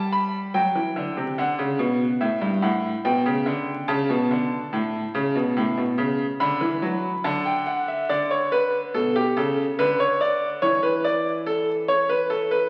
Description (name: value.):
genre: classical, baroque-style two-part invention for grand piano.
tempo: 72 BPM.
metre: 4/4.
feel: straight.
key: G major.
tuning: A4 = 440 Hz.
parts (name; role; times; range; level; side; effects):
bright grand piano; solo; 0.0-12.7 s; G2 to B5; -23 LUFS; equal; none.
room: wet recital hall reverb, RT60 1.6 s.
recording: very old 78 rpm record, vinyl crackle.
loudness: -23 LUFS.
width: mono.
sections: 0.0-8.1 A section; 8.1-12.7 B section.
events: none.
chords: 0.0 G; 1.4 D (rootless); 3.0 G/B; 4.7 A; 6.4 D; 8.1 D5; 9.8 Bmadd11/D; 11.5 A/E.